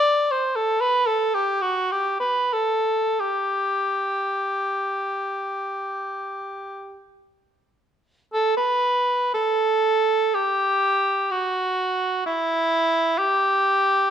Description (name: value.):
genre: classical, free, expressive piece for unaccompanied cor anglais.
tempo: 39-65 BPM.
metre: 4/4.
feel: rubato.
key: G major.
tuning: A4 = 440 Hz.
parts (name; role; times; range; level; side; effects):
warm cor anglais; solo; 0.0-14.1 s; E4 to D5; -20 LUFS; equal; none.
room: moderate recital hall reverb, RT60 1.4 s.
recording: none.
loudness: -20 LUFS.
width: side -9 dB against mid.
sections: 0.0-8.3 A section; 8.3-14.1 B section.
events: none.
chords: none.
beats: 0.81 1.92 | 3.20 4.52 5.79 7.02 | 8.34 9.36 10.37 11.32 | 12.25 13.20.